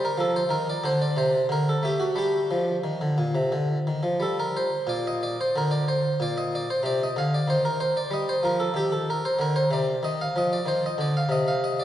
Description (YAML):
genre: classical, baroque-style suite movement for harpsichord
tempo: 87-95 BPM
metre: 4/4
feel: rubato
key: unclear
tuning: A4 = 441 Hz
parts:
  - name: harpsichord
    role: solo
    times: 0.0-11.8 s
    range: Bb2 to F5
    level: -22 LUFS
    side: equal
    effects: none
room: wet church reverb, RT60 2.6 s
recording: worn, warbling old tape, cassette tape, warbly pitch drift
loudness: -22 LUFS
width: side -12 dB against mid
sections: 0.0-4.9 A section; 4.9-11.8 A section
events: none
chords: 0.0 Cm11; 0.8 D5; 2.2 G5; 4.9 Bb; 7.5 Eb; 10.0 Cm